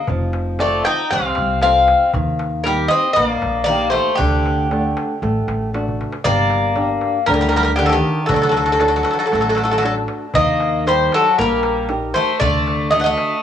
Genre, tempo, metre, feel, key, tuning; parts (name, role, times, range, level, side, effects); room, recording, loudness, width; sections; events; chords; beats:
greek folk, Greek bouzouki band; 117 BPM; 4/4; straight; G harmonic minor from 6.3 s; A4 = 439 Hz
Greek bouzouki; melody; 0.0-13.4 s; G4 to G5; -18 LUFS; left 1 dB
Greek bouzouki; second line; 0.0-13.4 s; D3 to Eb4; -22 LUFS; left 3 dB; cassette tape
flamenco guitar; accompaniment; 0.1-13.3 s; C3 to F#5; -24 LUFS; right 1 dB; cassette tape
upright bass; bass; 0.1-13.1 s; F1 to Eb2; -23 LUFS; equal
darbuka; percussion; 0.1-13.3 s; -27 LUFS; equal
moderate spring reverb, RT60 2.9 s; home recording on cassette, small room ambience; -15 LUFS; side -9 dB against mid
0.0-6.3 A section; 6.3-13.4 B section
drum fill 5.9-6.3
0.1 F; 2.1 Eb; 4.2 D; 6.3 Gm; 8.3 D; 10.4 Eb; 12.4 D
| 0.08 0.59 1.11 1.62 | 2.14 2.65 3.17 3.69 | 4.20 4.71 5.23 5.74 | 6.26 6.77 7.29 7.80 | 8.31 8.82 9.34 9.85 | 10.36 10.88 11.39 11.90 | 12.41 12.93